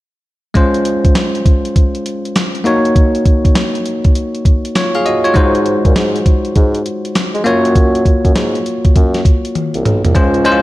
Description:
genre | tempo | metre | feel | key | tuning
R&B, new jack swing | 100 BPM | 4/4 | swing 64% on 16ths | Db major | A4 = 440 Hz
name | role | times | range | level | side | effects
bell-like tine electric piano | accompaniment | 0.5-10.6 s | Ab3 to F5 | -15 LUFS | left 1 dB | none
clean 12-bit digital drum machine | drums | 0.6-10.6 s | handclaps, hi-hat, kick drum, snare drum, toms | -12 LUFS | equal | none
mellow bassoon | bass | 5.4-10.6 s | Cb2 to Ab3 | -18 LUFS | equal | none
room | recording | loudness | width
light reverb | none | -11 LUFS | side -17 dB against mid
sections
0.6-10.2 A section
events
drum fill 9.6-10.2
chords
0.6 Dbmaj7; 2.7 Ebm7; 5.4 Ab7; 7.5 Gbmaj7

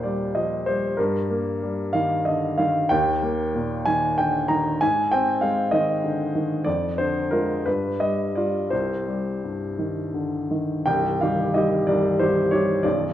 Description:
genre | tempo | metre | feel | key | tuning
classical, romantic character piece for solo piano | 54-66 BPM (dotted quarters) | 6/8 | rubato | C minor | A4 = 442 Hz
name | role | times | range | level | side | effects
clear baby grand piano | solo | 0.0-13.1 s | B0 to Bb5 | -21 LUFS | equal | none
room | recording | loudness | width
wet recital hall reverb, RT60 1.5 s | worn, warbling old tape, cassette tape, warbly pitch drift | -21 LUFS | side -12 dB against mid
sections
0.0-10.9 A section; 10.9-13.1 B section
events
none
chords
0.0 Eb; 1.0 Eb/G; 2.9 Eb; 4.8 Ab; 6.7 Ddim/F; 7.7 G7b13; 8.7 Cm

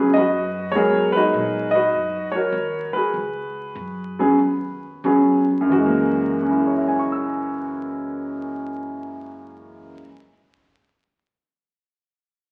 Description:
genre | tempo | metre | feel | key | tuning
jazz piano trio | 87-103 BPM | 4/4 | swing 68% on 8ths | F# mixolydian | A4 = 441 Hz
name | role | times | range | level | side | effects
warm concert grand piano | melody | 0.0-10.3 s | F#2 to E6 | -22 LUFS | equal | none
upright bass | bass | 0.0-9.9 s | F#1 to A#2 | -40 LUFS | equal | none
room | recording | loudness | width
wet large studio reverb, RT60 1.3 s | very old 78 rpm record, vinyl crackle | -21 LUFS | mono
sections
0.0-5.7 A section; 5.7-8.5 B section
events
slowing down 0.8-5.7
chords
0.0 C#7sus4 (rootless); 0.8 G#m9; 3.1 C#7sus4; 5.7 F#9

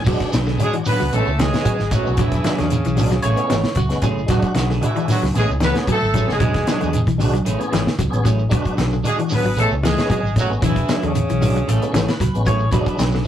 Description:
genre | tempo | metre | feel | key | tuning
afrobeat | 114 BPM | 4/4 | straight | E mixolydian | A4 = 441 Hz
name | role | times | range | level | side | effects
tonewheel organ | accompaniment | 0.0-13.0 s | F#3 to G#4 | -28 LUFS | equal | slow rotary speaker, chorus vibrato
shekere | percussion | 0.0-13.3 s | none | -26 LUFS | right 2 dB | none
clean electric guitar | arpeggios | 0.1-13.3 s | C#3 to F#3 | -26 LUFS | left 2 dB | none
electric guitar at the edge of break-up | stabs | 0.1-13.3 s | E3 to G#4 | -26 LUFS | right 3 dB | none
fingered electric bass | bass | 0.1-13.2 s | E1 to E2 | -22 LUFS | equal | none
damped 70s drum kit | drums | 0.1-13.2 s | crash cymbal, hi-hat, kick drum, snare drum | -23 LUFS | equal | none
congas | percussion | 0.3-13.1 s | none | -25 LUFS | left 1 dB | none
warm horn section | melody | 0.6-12.0 s | C#4 to B4 | -25 LUFS | left 1 dB | none
growling alto saxophone | second line | 0.6-12.1 s | C#3 to B3 | -27 LUFS | right 3 dB | none
mandolin | second line | 3.2-4.7, 11.7-13.1 s | F#4 to C#5 | -27 LUFS | equal | none
room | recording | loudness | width
wet small room reverb, RT60 0.5 s | rough rehearsal-room recording, tube saturation | -16 LUFS | side -10 dB against mid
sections
0.1-13.3 A section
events
none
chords
0.1 E9; 1.1 Amaj7; 2.2 E9; 3.2 Amaj7; 4.3 E9; 5.3 Amaj7; 6.4 E9; 7.5 Amaj7; 8.5 E9; 9.6 Amaj7; 10.6 E9; 11.7 Amaj7; 12.7 E9

